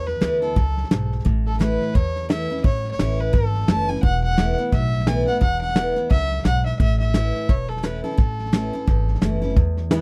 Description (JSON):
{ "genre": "honky-tonk and classic country", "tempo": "173 BPM", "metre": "4/4", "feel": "swing 60% on 8ths", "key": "unclear", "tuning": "A4 = 435 Hz", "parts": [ { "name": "dark fiddle", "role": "second line", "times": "0.0-9.4 s", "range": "A4 to A5", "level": "-29 LUFS", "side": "equal", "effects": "none" }, { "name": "picked steel-string acoustic guitar", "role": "accompaniment", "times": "0.0-10.0 s", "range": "E2 to E4", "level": "-28 LUFS", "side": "equal", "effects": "none" }, { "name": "upright bass", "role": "bass", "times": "0.0-10.0 s", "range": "E1 to E2", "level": "-26 LUFS", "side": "equal", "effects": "none" }, { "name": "soft brush drum kit", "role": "drums", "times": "0.1-10.0 s", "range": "hi-hat, kick drum, snare drum", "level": "-23 LUFS", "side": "equal", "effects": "none" }, { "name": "tonewheel organ", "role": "accompaniment", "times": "9.9-10.0 s", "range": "E4 to B4", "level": "-25 LUFS", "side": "equal", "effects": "slow rotary speaker, overdrive, chorus vibrato" } ], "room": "little or no reverb", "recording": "dry, close 1970s-style studio recording", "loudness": "-21 LUFS", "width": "mono", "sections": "0.0-9.6 A section", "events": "fiddle solo 0.0-9.6", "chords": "0.0 Esus4; 1.3 A; 4.0 Esus4; 6.8 A", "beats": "0.22 0.56 0.91 | 1.26 1.60 1.95 2.30 | 2.64 2.99 3.34 3.68 | 4.03 4.38 4.72 5.07 | 5.42 5.76 6.11 6.45 | 6.80 7.15 7.49 7.84 | 8.18 8.53 8.88 9.22 | 9.57 9.91" }